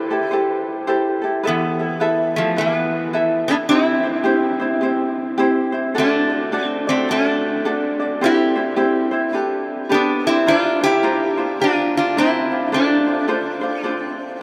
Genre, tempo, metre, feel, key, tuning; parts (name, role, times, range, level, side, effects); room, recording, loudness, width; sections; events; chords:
Hawaiian; 106 BPM; 4/4; swing 62% on 8ths; C major; A4 = 439 Hz
metal-body resonator slide guitar; melody; 0.0-14.4 s; E3 to C5; -22 LUFS; equal
ukulele; accompaniment; 0.0-14.4 s; C4 to E5; -22 LUFS; equal
wet huge ambient reverb, RT60 8.5 s; in a vast, echoing space; -19 LUFS; mono
0.0-1.4 A section; 1.4-14.4 A section
0.0 C6; 1.4 Asus2; 3.7 C; 6.0 D; 8.2 C; 9.3 Gadd9; 10.5 Bbadd9; 12.7 F6